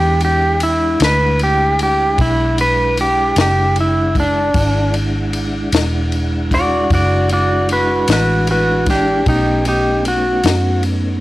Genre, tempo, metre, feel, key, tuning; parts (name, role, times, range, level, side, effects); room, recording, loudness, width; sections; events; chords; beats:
slow blues; 51 BPM (dotted quarters); 12/8; straight; E mixolydian; A4 = 435 Hz
clean lap steel guitar; melody; 0.0-10.8 s; D4 to D5; -15 LUFS; equal
mellow tonewheel organ; sustained chords; 0.0-11.2 s; G#3 to F#5; -23 LUFS; right 1 dB; slow rotary speaker, chorus vibrato
vintage muted fingered electric bass; bass; 0.0-11.2 s; E1 to F#2; -18 LUFS; equal
compact cocktail drum kit; drums; 0.2-11.0 s; kick drum, ride cymbal, snare drum; -22 LUFS; left 2 dB
small room reverb; 1960s-style stereo; -13 LUFS; side -17 dB against mid
0.0-11.2 A section
electric slide guitar solo 0.0-11.2
0.0 E9; 9.3 B9
0.99 2.18 3.36 | 4.54 5.72 6.90 8.08 | 9.26 10.45